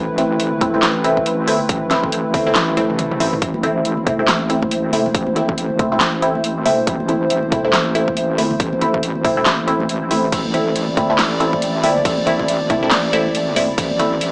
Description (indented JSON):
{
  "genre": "deep dubstep",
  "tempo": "139 BPM",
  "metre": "4/4",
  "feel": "swing 59% on 16ths, half-time",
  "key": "A minor",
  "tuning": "A4 = 440 Hz",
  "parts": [
    { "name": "dark analog pad", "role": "sustained chords", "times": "0.0-14.3 s", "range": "A3 to D5", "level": "-25 LUFS", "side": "equal", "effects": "chorus" },
    { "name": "wobble bass", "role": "bass", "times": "0.0-14.3 s", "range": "A1", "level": "-27 LUFS", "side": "equal", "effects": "chorus" },
    { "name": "filtered dub chord stab", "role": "stabs", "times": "0.2-14.2 s", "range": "A3 to E4", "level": "-21 LUFS", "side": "equal", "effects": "phaser, dub echo" },
    { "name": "dubstep drum kit", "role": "drums", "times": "0.2-14.3 s", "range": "crash cymbal, handclaps, hi-hat, snare drum, toms", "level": "-23 LUFS", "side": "equal", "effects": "none" },
    { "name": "electronic kick drum", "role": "drums", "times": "0.6-13.9 s", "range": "none", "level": "-26 LUFS", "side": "equal", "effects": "none" },
    { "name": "swell", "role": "sound effects", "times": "2.8-3.4 s", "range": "none", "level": "-35 LUFS", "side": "equal", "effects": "none" },
    { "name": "congas and bongos", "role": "percussion", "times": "3.5-14.1 s", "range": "none", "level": "-30 LUFS", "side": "equal", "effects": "none" }
  ],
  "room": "moderate echo chamber reverb, RT60 1.4 s",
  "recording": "small speaker sound",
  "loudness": "-18 LUFS",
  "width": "mono",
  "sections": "0.0-14.3 A section",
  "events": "drum fill 2.6-3.4",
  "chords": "0.0 Am"
}